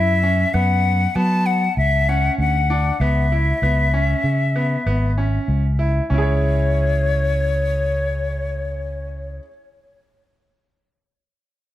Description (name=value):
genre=progressive instrumental, band music in an uneven meter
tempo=97 BPM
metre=5/4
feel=straight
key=C# phrygian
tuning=A4 = 440 Hz
part: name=bright silver concert flute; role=melody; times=0.0-9.4 s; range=C#5 to A5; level=-22 LUFS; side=left 4 dB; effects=tape echo
part: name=bright grand piano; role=arpeggios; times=0.0-9.5 s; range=B3 to C#5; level=-26 LUFS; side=right 2 dB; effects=none
part: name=fingered electric bass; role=bass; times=0.0-9.4 s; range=G#1 to F#3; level=-19 LUFS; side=equal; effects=none
room=light reverb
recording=echo-heavy mix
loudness=-17 LUFS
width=side -14 dB against mid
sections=0.0-6.1 A section; 6.1-9.2 B section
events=none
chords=0.0 F#5; 3.0 C#m7; 6.1 C#m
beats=0.54 1.16 1.77 2.39 | 3.01 3.63 4.25 4.86 5.48 | 6.10 6.72 7.33 7.95 8.57